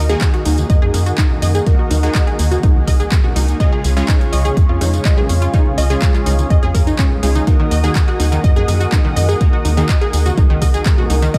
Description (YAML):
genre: progressive house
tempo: 124 BPM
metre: 4/4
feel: straight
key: Eb minor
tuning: A4 = 436 Hz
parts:
  - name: lush unison pad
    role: sustained chords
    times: 0.3-11.4 s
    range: Ab4 to Eb6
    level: -30 LUFS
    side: equal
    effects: chorus, phaser, sidechain pumping
  - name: unison pluck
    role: arpeggios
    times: 0.0-11.4 s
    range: Eb3 to Eb5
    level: -24 LUFS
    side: equal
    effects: sidechain pumping, dub echo
  - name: supersaw stab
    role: stabs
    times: 0.0-11.4 s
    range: Bb2 to Bb4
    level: -25 LUFS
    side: equal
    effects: sidechain pumping, dub echo
  - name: tight sequencer bass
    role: bass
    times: 0.0-11.3 s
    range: Db2 to Gb2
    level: -18 LUFS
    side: equal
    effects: sidechain pumping
  - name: deep house drum kit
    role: drums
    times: 0.1-11.4 s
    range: handclaps, hi-hat, rim click, tambourine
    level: -28 LUFS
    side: equal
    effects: overdrive, studio reverb
  - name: bongos and congas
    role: percussion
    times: 0.1-11.2 s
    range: none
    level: -32 LUFS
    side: equal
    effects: none
  - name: electronic kick drum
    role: drums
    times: 0.2-11.4 s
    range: none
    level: -16 LUFS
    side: equal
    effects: overdrive, studio reverb
room: little or no reverb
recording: none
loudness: -15 LUFS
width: mono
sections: 0.0-11.4 A section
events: none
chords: 0.0 Ebm; 3.6 Db; 7.5 Ebm